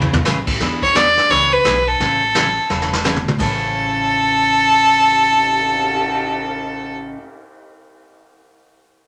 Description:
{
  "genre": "country, western swing",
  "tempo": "171 BPM",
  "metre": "4/4",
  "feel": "swing 63% on 8ths",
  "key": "A major",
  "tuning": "A4 = 440 Hz",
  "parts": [
    { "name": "picked steel-string acoustic guitar", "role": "accompaniment", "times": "0.0-7.2 s", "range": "A2 to G#4", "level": "-27 LUFS", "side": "equal", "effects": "none" },
    { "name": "upright bass", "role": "bass", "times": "0.0-7.1 s", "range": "E1 to E2", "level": "-31 LUFS", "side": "equal", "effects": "none" },
    { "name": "vintage brush drum kit", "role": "drums", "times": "0.0-6.1 s", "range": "brushed snare drum, crash cymbal, cymbal swell, hi-hat, kick drum, snare drum, toms", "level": "-24 LUFS", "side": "equal", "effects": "none" },
    { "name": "bright fiddle", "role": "melody", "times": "0.8-7.0 s", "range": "A4 to D5", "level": "-17 LUFS", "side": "equal", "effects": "none" }
  ],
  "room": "wet studio reverb, RT60 0.9 s",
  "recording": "none",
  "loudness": "-16 LUFS",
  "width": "mono",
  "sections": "0.6-3.4 A section; 3.4-6.2 B section",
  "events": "drum fill 0.0, 2.7-3.4",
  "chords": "0.0 Amaj7; 0.6 E7; 2.0 Amaj7; 3.4 A"
}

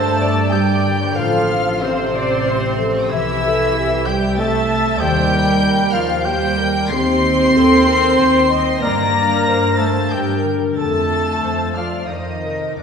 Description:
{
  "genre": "cinematic, emotional film score for orchestra",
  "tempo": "93 BPM",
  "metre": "3/4",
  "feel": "rubato",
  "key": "unclear",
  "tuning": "A4 = 440 Hz",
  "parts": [
    { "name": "warm symphonic violin section", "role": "melody", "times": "0.0-12.8 s", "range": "C6 to C7", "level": "-26 LUFS", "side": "left 3 dB", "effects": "none" },
    { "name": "dark symphonic violin section", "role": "second line", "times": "0.0-12.8 s", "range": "C5 to C6", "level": "-26 LUFS", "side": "left 2 dB", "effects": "none" },
    { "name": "flute section", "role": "second line", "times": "0.0-12.8 s", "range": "C5 to C6", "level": "-23 LUFS", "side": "left 1 dB", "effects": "none" },
    { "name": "warm oboe", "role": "second line", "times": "0.0-12.8 s", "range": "C4 to C5", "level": "-26 LUFS", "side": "right 1 dB", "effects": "none" },
    { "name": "dark studio viola section", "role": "accompaniment", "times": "0.0-12.8 s", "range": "G4 to E5", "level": "-24 LUFS", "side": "equal", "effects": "none" },
    { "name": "mellow French horn section", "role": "sustained chords", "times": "0.0-12.8 s", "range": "C3 to C4", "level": "-22 LUFS", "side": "left 2 dB", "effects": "none" },
    { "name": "concert harp", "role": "arpeggios", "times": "0.0-12.8 s", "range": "F2 to A5", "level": "-26 LUFS", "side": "left 7 dB", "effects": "none" },
    { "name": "dark symphonic double bass section", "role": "bass", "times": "0.0-12.8 s", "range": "A1 to G2", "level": "-24 LUFS", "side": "right 2 dB", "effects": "none" },
    { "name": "rich symphonic cello section", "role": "bass", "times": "0.0-12.8 s", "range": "C3 to C4", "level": "-22 LUFS", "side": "right 4 dB", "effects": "none" },
    { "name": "timpani", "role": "percussion", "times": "8.8-9.7 s", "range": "none", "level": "barely audible", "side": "none", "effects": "none" }
  ],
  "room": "wet scoring stage reverb, RT60 1.8 s",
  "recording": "heard from further back in the room",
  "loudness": "-14 LUFS",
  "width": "side -6 dB against mid",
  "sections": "0.0-12.8 A section",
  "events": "none",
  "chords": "0.0 Gm; 1.2 F/A; 3.1 C; 5.0 Eb; 6.9 Cm/Eb; 8.8 Gm; 10.8 F"
}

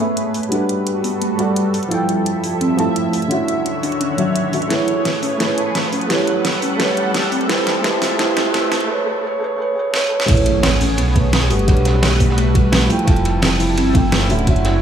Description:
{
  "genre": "liquid drum and bass",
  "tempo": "172 BPM",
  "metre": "4/4",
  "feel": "straight",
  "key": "A major",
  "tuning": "A4 = 441 Hz",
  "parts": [
    { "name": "felt-muted upright piano", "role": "accompaniment", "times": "0.0-14.8 s", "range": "D3 to A5", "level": "-20 LUFS", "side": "equal", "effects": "dub echo" },
    { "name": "lush unison pad", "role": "sustained chords", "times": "0.0-14.8 s", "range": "D3 to F#5", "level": "-24 LUFS", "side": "right 1 dB", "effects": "chorus, phaser, sidechain pumping" },
    { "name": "harp-like synth pluck", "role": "arpeggios", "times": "0.0-14.6 s", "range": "F#3 to F4", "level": "-22 LUFS", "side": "equal", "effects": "chorus, digital delay" },
    { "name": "riser and impact", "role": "sound effects", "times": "1.3-11.7 s", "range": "none", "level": "-28 LUFS", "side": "right 1 dB", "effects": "none" },
    { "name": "pop drum kit", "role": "drums", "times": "0.2-14.7 s", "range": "crash cymbal, hi-hat, snare drum", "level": "-21 LUFS", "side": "right 1 dB", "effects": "overdrive" },
    { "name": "dark detuned saw bass", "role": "bass", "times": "10.3-14.8 s", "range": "D1 to B1", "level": "-18 LUFS", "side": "right 1 dB", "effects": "none" },
    { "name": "crunchy breakbeat drum kit", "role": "drums", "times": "10.3-14.7 s", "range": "hi-hat, ride cymbal, snare drum", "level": "-26 LUFS", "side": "right 1 dB", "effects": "high-pass filter on cymbals, high-pass filter on hats, high-pass filter on snare, high-pass filter on room" },
    { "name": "electronic kick drum", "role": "drums", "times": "10.3-14.5 s", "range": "none", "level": "-15 LUFS", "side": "right 1 dB", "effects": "overdrive" }
  ],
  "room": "moderate scoring stage reverb, RT60 2.0 s",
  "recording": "high-pass filter, small room ambience",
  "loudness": "-15 LUFS",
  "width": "side -8 dB against mid",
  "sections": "0.0-10.3 A section; 10.3-14.8 B section",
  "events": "build-up 0.0-10.3; filter sweep 0.0-10.3; riser 1.3-8.9; drum fill 4.7-8.9, 9.9-10.3; break 8.9-10.3; drop 10.3-14.8; impact 10.3-11.7",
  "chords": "0.3 Gmaj9; 1.7 Fmaj9; 3.1 Dmaj9; 4.7 Amaj9; 5.9 Gmaj9; 7.3 Fmaj9; 8.7 Dmaj9; 10.3 Amaj9; 11.5 Gmaj9; 12.9 Fmaj9; 14.3 Dmaj9"
}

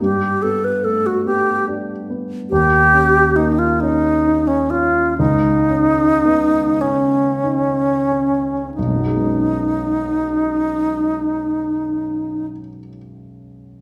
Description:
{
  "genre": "classical, impressionist duo for alto flute and grand piano",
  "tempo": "28-48 BPM (dotted quarters)",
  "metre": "6/8",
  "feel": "rubato",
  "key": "B major",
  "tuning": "A4 = 439 Hz",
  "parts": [
    { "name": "bright alto flute", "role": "melody", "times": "0.0-12.5 s", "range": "C#4 to B4", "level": "-18 LUFS", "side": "equal", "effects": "none" },
    { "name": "dark baby grand piano", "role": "accompaniment", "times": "0.0-13.8 s", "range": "B1 to D#4", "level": "-24 LUFS", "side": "equal", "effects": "none" }
  ],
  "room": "wet recital hall reverb, RT60 1.4 s",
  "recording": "none",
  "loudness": "-17 LUFS",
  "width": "mono",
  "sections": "0.0-8.8 A section; 8.8-12.4 B section",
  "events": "slowing down 1.3-8.8",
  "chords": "0.0 Gadd9; 2.5 D#7; 5.2 C#sus2; 8.8 B69"
}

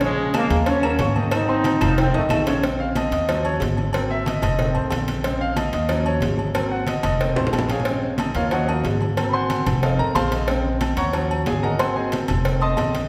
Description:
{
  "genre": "latin, salsa",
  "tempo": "183 BPM",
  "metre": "4/4",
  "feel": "straight",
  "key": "Bb minor",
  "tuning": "A4 = 441 Hz",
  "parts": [
    { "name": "bright trombone section", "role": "melody", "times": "0.0-2.6 s", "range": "C3 to Eb4", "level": "-26 LUFS", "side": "equal", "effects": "none" },
    { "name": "clear grand piano", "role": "accompaniment", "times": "0.0-13.1 s", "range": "Db3 to Eb6", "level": "-26 LUFS", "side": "equal", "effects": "none" },
    { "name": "upright bass", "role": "bass", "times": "0.0-13.1 s", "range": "F1 to Eb2", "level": "-27 LUFS", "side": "equal", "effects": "none" },
    { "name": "congas", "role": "percussion", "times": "0.0-13.1 s", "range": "none", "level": "-31 LUFS", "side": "equal", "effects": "none" },
    { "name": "cowbell", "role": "percussion", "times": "0.0-13.1 s", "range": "none", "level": "-31 LUFS", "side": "equal", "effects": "none" },
    { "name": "claves", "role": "percussion", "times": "0.3-2.5 s", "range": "none", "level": "-37 LUFS", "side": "equal", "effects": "none" },
    { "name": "timbales and agogo bells", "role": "percussion", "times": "0.3-12.9 s", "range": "none", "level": "-31 LUFS", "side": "equal", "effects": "none" }
  ],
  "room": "wet recital hall reverb, RT60 1.6 s",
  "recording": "recorded in a church or concert hall",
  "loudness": "-21 LUFS",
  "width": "mono",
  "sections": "0.0-2.6 A section; 2.6-13.1 B section",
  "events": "drum fill 2.0-2.6, 7.0-7.9; grand piano solo 2.6-13.1",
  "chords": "0.0 Bbm7; 0.7 Ebm7; 1.3 Ab7; 2.0 F7; 2.6 Bbm7; 3.3 Ebm7; 3.9 Ab7; 4.6 F7; 5.2 Bbm7; 5.9 Ebm7; 6.6 Ab7; 7.2 F7; 7.9 Bbm7; 8.5 Ebm7; 9.2 Ab7; 9.8 F7; 10.5 Bbm7; 11.1 Ebm7; 11.8 Ab7; 12.4 F7"
}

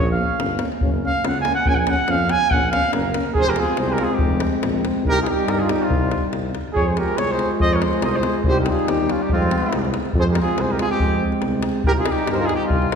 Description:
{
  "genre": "balkan folk, Balkan brass band",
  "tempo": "141 BPM",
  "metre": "2/4",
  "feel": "swing 55% on 16ths",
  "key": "Bb minor, F minor from 3.4 s",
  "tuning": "A4 = 440 Hz",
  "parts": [
    { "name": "warm trumpet", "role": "melody", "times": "0.0-13.0 s", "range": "F4 to Ab5", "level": "-23 LUFS", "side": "right 1 dB", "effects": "none" },
    { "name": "dark French horn", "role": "accompaniment", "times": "0.0-13.0 s", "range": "C4 to F4", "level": "-26 LUFS", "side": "left 4 dB", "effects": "none" },
    { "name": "mellow euphonium", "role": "accompaniment", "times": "0.0-13.0 s", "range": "G3 to Bb3", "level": "-28 LUFS", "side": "right 4 dB", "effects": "none" },
    { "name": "mellow tuba", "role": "bass", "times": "0.0-12.9 s", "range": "F1 to G2", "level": "-25 LUFS", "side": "equal", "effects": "none" },
    { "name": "davul", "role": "percussion", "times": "0.4-13.0 s", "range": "none", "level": "-24 LUFS", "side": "left 1 dB", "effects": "none" },
    { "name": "mellow flugelhorn", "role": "second line", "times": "3.3-13.0 s", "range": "C4 to C5", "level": "-26 LUFS", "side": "right 3 dB", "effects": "none" }
  ],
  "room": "wet concert hall reverb, RT60 2.1 s",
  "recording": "recorded in a church or concert hall",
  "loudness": "-17 LUFS",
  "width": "side -6 dB against mid",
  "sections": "0.0-3.4 A section; 3.4-10.2 B section; 10.2-13.0 B section",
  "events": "trumpet solo 0.0-3.4",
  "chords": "0.0 Bbm; 0.8 Gb; 1.7 Bbm; 3.4 Fm; 5.1 Cm; 6.8 Fm; 8.5 Cm; 9.3 Fm; 11.9 Cm"
}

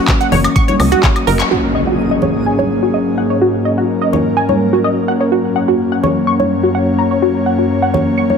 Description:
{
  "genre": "progressive house",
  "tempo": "126 BPM",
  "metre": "4/4",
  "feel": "straight",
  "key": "unclear",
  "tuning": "A4 = 440 Hz",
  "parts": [
    { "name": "airy breathy pad", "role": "sustained chords", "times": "0.0-8.4 s", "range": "Gb2 to Db5", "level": "-15 LUFS", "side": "left 2 dB", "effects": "chorus, sidechain pumping" },
    { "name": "tight sequenced synth", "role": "arpeggios", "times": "0.0-8.4 s", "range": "Gb4 to Db6", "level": "-16 LUFS", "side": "right 1 dB", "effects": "chorus, vintage 12-bit sampler grit, sidechain pumping, dub echo" },
    { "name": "backwards swelling texture", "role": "texture", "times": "0.0-1.5 s", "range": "Eb5 to Eb6", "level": "-34 LUFS", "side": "equal", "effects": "none" },
    { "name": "big-room dance drum kit", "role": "drums", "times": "0.1-1.5 s", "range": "handclaps, hi-hat, woodblock", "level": "-19 LUFS", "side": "left 1 dB", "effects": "low-pass filter on hats, studio reverb, low-pass filter on snare, low-pass filter on perc" },
    { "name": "electronic kick drum", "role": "drums", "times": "0.1-1.1 s", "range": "none", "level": "-13 LUFS", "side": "equal", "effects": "studio reverb" },
    { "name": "tight sequencer bass", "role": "bass", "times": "0.3-1.4 s", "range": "Gb1 to Db2", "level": "-15 LUFS", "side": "equal", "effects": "sidechain pumping" },
    { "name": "congas", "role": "percussion", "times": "0.3-8.4 s", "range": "none", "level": "-20 LUFS", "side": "right 2 dB", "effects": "sidechain pumping on perc" },
    { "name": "impact", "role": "sound effects", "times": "1.5-3.4 s", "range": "none", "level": "-22 LUFS", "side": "equal", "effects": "none" }
  ],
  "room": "wet recital hall reverb, RT60 1.4 s",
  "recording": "none",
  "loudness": "-12 LUFS",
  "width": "side -6 dB against mid",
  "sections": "0.0-1.5 A section; 1.5-8.4 B section",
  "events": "filter sweep on analog synth pad 0.0-1.5; drum fill 1.0-1.5; band accent 1.4; impact 1.5-3.4; filter sweep on synth arpeggio sound 1.5-8.4",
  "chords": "0.0 Gb; 1.5 Ab7sus4; 5.3 Gb"
}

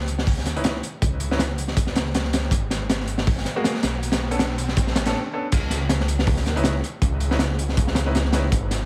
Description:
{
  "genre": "drum and bass, jungle",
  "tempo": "160 BPM",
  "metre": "4/4",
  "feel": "swing 55% on 16ths",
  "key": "C# minor",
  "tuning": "A4 = 440 Hz",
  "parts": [
    { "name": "detuned saw bass", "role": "bass", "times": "0.0-8.9 s", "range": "G#1 to D#2", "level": "-28 LUFS", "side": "equal", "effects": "none" },
    { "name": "crunchy breakbeat drum kit", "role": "drums", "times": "0.0-8.8 s", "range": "crash cymbal, hi-hat, kick drum, snare drum", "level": "-25 LUFS", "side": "equal", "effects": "none" },
    { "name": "riser", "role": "sound effects", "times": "2.6-5.1 s", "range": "none", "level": "-39 LUFS", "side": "equal", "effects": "none" },
    { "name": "clear concert grand piano", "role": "stabs", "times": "0.6-8.4 s", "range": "G#3 to B4", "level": "-32 LUFS", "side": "equal", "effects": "low-pass filter, dub echo" }
  ],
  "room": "small room ambience",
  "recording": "vinyl crackle",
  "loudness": "-23 LUFS",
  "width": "mono",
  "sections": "0.0-5.5 A section; 5.5-8.9 B section",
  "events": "build-up 0.0-5.5; break 5.1-5.5; drop 5.5-8.9",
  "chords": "0.0 C#sus2; 2.5 G#m; 4.0 Bm9; 5.5 C#m9"
}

